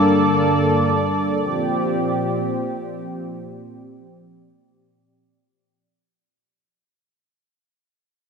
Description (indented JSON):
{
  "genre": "synthwave",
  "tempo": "free time",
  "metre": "none",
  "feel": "none",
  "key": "unclear",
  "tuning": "A4 = 438 Hz",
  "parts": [
    { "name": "lush unison pad", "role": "sustained chords", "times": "0.0-5.9 s", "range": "G2 to D5", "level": "-18 LUFS", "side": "equal", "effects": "chorus" }
  ],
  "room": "wet plate reverb, RT60 2.9 s",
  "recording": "bright 1980s-style digital production",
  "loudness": "-18 LUFS",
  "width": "side -5 dB against mid",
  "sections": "0.0-5.9 A section",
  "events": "fade-out 0.0-5.9",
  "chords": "0.0 Gm; 1.4 Bb6",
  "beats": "free time"
}